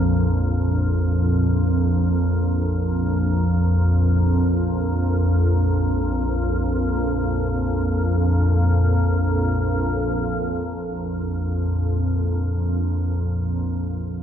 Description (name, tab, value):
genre	ambient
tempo	free time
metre	none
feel	none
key	unclear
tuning	A4 = 440 Hz
part	organ-like drone	drone	0.0-13.6 s	Bb1 to F2	-19 LUFS	equal	ensemble chorus, built-in reverb
room	wet spring reverb, RT60 2.8 s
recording	cassette tape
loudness	-19 LUFS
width	side -9 dB against mid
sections	0.0-10.2 A section; 10.2-13.8 B section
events	none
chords	0.0 Bb5